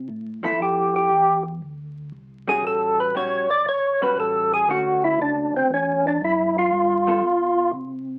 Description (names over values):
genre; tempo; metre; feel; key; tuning
soul jazz organ trio; 118 BPM; 4/4; swing 68% on 8ths; A mixolydian; A4 = 441 Hz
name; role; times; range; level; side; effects
mellow tonewheel organ; bass; 0.0-8.2 s; A1 to C3; -36 LUFS; equal; chorus vibrato, slow rotary speaker
percussive tonewheel organ; melody; 0.4-7.7 s; C4 to D5; -21 LUFS; equal; slow rotary speaker, overdrive
vintage hollow-body jazz guitar; accompaniment; 0.4-7.2 s; D3 to A4; -33 LUFS; equal; none
room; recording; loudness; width
moderate club reverb, RT60 0.6 s; very old 78 rpm record, vinyl crackle; -21 LUFS; mono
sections
0.0-8.2 A section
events
tonewheel organ solo 0.0-8.2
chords
0.0 C6; 0.6 Fmaj9#11; 2.6 A13; 4.7 Dmaj7; 6.7 G9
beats
0.10 | 0.61 1.12 1.63 2.14 | 2.65 3.15 3.67 4.17 | 4.68 5.19 5.70 6.21 | 6.72 7.23 7.74